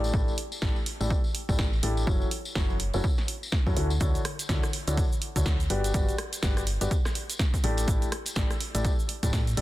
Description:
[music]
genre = piano house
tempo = 124 BPM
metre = 4/4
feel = swing 59% on 16ths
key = unclear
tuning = A4 = 441 Hz
[part]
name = clear concert grand piano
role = riff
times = 0.0-9.6 s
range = D3 to D5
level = -33 LUFS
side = left 2 dB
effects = sidechain pumping, low-pass filter, tape echo
[part]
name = solid FM bass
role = bass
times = 0.0-9.6 s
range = F#1 to A2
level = -29 LUFS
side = equal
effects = sidechain pumping
[part]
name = tambourine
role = percussion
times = 0.0-9.6 s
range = none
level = -41 LUFS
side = left 3 dB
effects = none
[part]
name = electronic kick drum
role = drums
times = 0.1-9.4 s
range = none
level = -27 LUFS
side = equal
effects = none
[part]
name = punchy analog drum machine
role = drums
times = 0.4-9.6 s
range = hi-hat, rim click, shaker, snare drum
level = -34 LUFS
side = right 1 dB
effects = none
[sound]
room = digital ambience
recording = dense, heavily limited modern master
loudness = -25 LUFS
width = side -16 dB against mid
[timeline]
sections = 0.0-9.6 A section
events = none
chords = 0.0 A7sus4; 2.1 F#m7; 4.0 Dmaj9; 5.7 Gmaj7; 7.6 A7sus4

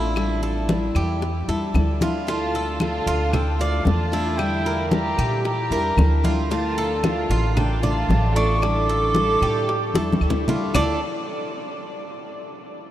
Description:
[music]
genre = latin, Cuban son and guajira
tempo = 113 BPM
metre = 4/4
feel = straight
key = D minor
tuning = A4 = 440 Hz
[part]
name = picked steel-string acoustic guitar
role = accompaniment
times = 0.0-11.0 s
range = D3 to F4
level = -27 LUFS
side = left 2 dB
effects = none
[part]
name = Cuban tres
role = arpeggios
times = 0.0-11.0 s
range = D4 to D5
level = -28 LUFS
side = right 2 dB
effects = none
[part]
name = upright bass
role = bass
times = 0.0-11.0 s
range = A1 to Bb2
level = -23 LUFS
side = equal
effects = none
[part]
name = bongos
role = percussion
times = 0.2-10.9 s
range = none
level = -32 LUFS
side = left 5 dB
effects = none
[part]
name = claves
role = percussion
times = 0.2-10.9 s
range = none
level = -40 LUFS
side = left 5 dB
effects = none
[part]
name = congas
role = percussion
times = 0.2-10.9 s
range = none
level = -28 LUFS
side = equal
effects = none
[part]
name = concert flute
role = melody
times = 2.3-10.2 s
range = F5 to D6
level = -28 LUFS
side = equal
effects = none
[part]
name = warm studio violin section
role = second line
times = 2.3-10.2 s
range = D4 to A4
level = -29 LUFS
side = right 2 dB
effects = none
[sound]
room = moderate huge ambient reverb, RT60 8.8 s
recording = in a vast, echoing space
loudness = -19 LUFS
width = side -12 dB against mid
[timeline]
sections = 0.0-2.3 A section; 2.3-10.7 B section; 10.7-12.9 C section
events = drum fill 2.0, 10.0-10.7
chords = 0.2 A7sus4; 2.3 Dm; 4.4 Em7b5; 6.5 Dm; 8.6 A7sus4; 10.7 D5

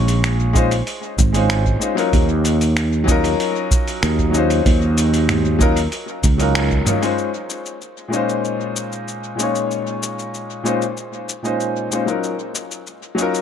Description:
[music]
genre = sunset chillout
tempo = 95 BPM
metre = 4/4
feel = straight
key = Bb minor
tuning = A4 = 440 Hz
[part]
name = clear concert grand piano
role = accompaniment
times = 0.0-13.4 s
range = Bb2 to Db5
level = -21 LUFS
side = moving between left 5 dB and right 3 dB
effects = auto-pan, tape echo
[part]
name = sustaining fretless electric bass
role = bass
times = 0.0-6.8 s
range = Ab1 to Eb2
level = -17 LUFS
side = right 1 dB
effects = wide subtle chorus
[part]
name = dusty soul sampler-style drum kit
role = drums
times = 0.1-13.4 s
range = finger snaps, hi-hat, shaker, toms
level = -25 LUFS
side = equal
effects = overdrive, tape echo
[part]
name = electronic kick drum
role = drums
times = 0.6-6.8 s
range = none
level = -18 LUFS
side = right 1 dB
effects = none
[sound]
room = light reverb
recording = echo-heavy mix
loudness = -16 LUFS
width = side -8 dB against mid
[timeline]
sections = 0.0-7.2 A section; 7.2-13.4 B section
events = band accent 6.6-6.9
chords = 0.0 Bbm11; 2.1 Ebm9; 7.2 Bbm11; 12.2 Ebm9

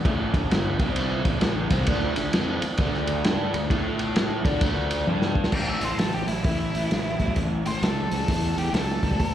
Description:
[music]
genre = blues rock power trio and southern rock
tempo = 131 BPM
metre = 4/4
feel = swing 63% on 8ths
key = unclear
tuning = A4 = 439 Hz
[part]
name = crunchy overdriven guitar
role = riff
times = 0.0-9.3 s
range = G2 to D5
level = -28 LUFS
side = equal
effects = slapback echo
[part]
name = fuzz fingered electric bass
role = bass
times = 0.0-9.3 s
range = G1 to D3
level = -29 LUFS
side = equal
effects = overdrive
[part]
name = vintage drum kit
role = drums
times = 0.1-9.3 s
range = crash cymbal, hi-hat, kick drum, ride cymbal, snare drum, toms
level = -25 LUFS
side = equal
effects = none
[part]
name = octave-fuzz lead guitar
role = melody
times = 5.6-9.3 s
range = E4 to G5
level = -30 LUFS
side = left 1 dB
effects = distortion, slapback echo, plate reverb
[sound]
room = light reverb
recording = live gig heard through the venue's PA, recital hall reverb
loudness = -22 LUFS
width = side -11 dB against mid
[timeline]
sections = 0.0-5.5 A section; 5.5-9.3 B section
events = drum fill 5.1-5.5; lead electric guitar solo 5.5-9.3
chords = 0.3 G5; 0.7 C5; 1.2 A5; 1.9 D5; 3.7 A5; 4.4 D5; 5.1 G5; 5.5 A

